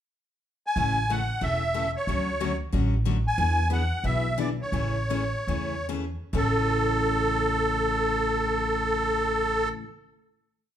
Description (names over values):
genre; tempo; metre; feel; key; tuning
acoustic string swing (jazz manouche); 129-185 BPM; 4/4; swing 61% on 8ths; A major; A4 = 442 Hz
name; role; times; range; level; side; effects
musette accordion; melody; 0.7-9.7 s; A4 to G#5; -26 LUFS; right 1 dB; none
picked steel-string acoustic guitar; accompaniment; 0.8-9.8 s; A2 to A4; -31 LUFS; left 4 dB; none
upright bass; bass; 0.8-9.7 s; E1 to E2; -28 LUFS; equal; none
room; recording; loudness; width
moderate large studio reverb, RT60 1.1 s; band playing live in one room; -23 LUFS; side -10 dB against mid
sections
0.0-0.8 pickup bar; 0.8-6.3 A section; 6.3-10.0 final chord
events
slowing down 3.4-6.3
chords
0.0 N.C.; 0.8 A; 2.1 Dmaj7; 3.4 E7; 4.7 Amaj7; 6.3 A